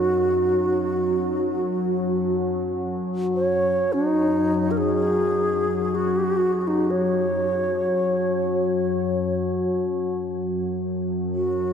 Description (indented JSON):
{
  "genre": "world meditative, free-time meditation music",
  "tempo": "free time",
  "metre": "none",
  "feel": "none",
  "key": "unclear",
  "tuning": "A4 = 435 Hz",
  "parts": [
    { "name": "xiao", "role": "melody", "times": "0.0-11.7 s", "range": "D#4 to C#5", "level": "-23 LUFS", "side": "right 1 dB", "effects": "diffuse ambient delay" },
    { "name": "deep dark ambient pad", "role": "drone", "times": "0.0-11.7 s", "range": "F#2 to F#3", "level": "-26 LUFS", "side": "left 2 dB", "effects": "chorus, built-in reverb" },
    { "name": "glass harmonica", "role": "texture", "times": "0.0-10.2 s", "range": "D#4 to F#4", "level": "-28 LUFS", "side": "equal", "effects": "none" }
  ],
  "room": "wet huge ambient reverb, RT60 6.0 s",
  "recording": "dark, warm production",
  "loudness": "-20 LUFS",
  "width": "side -7 dB against mid",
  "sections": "0.0-11.7 A section",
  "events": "none",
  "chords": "none",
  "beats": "free time"
}